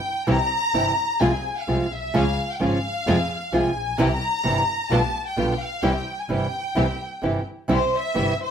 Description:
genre	tango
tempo	129 BPM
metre	4/4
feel	rubato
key	unclear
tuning	A4 = 437 Hz
part	rich studio violin section	second line	0.0-8.5 s	C5 to Bb5	-25 LUFS	left 1 dB	none
part	nylon-string guitar	accompaniment	0.3-8.3 s	B2 to F4	-23 LUFS	right 2 dB	none
part	rich studio string section	stabs	0.3-8.4 s	B3 to Ab4	-32 LUFS	left 3 dB	none
part	clear double bass	bass	0.3-8.4 s	G1 to F2	-28 LUFS	left 1 dB	none
room	moderate studio reverb, RT60 0.8 s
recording	none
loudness	-20 LUFS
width	side -8 dB against mid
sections	0.0-8.5 A section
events	violin section solo 0.0-8.5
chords	0.0 C; 1.2 Fm/C; 2.1 Db; 3.1 Fm; 4.0 C; 4.9 G7/B; 5.8 C

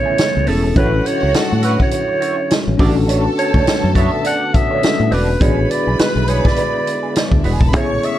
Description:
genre	lush 1970s-style soul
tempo	103 BPM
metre	4/4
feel	swing 58% on 16ths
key	unclear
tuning	A4 = 441 Hz
part	growling alto saxophone	melody	0.0-8.2 s	A4 to F#5	-20 LUFS	right 2 dB	none
part	rich studio violin section	second line	0.0-8.2 s	C#4 to C#6	-25 LUFS	left 1 dB	none
part	mellow tine electric piano	accompaniment	0.0-8.2 s	B3 to G#5	-23 LUFS	left 3 dB	medium stereo tremolo
part	mellow tonewheel organ	sustained chords	0.0-8.2 s	C#3 to F#4	-26 LUFS	equal	slow rotary speaker, chorus vibrato
part	electric guitar through a small old amp	riff	0.1-8.1 s	B3 to D5	-25 LUFS	right 6 dB	wah
part	vintage drum kit	drums	0.2-8.2 s	hi-hat, kick drum, snare drum	-17 LUFS	equal	none
part	fingered electric bass	bass	0.4-8.0 s	E1 to A2	-17 LUFS	equal	none
room	small room ambience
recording	dark, warm production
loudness	-13 LUFS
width	side -12 dB against mid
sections	0.0-8.2 A section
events	none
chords	0.0 Amaj7; 0.8 Dmaj9/A; 2.8 Bm9/A; 5.4 E7/A

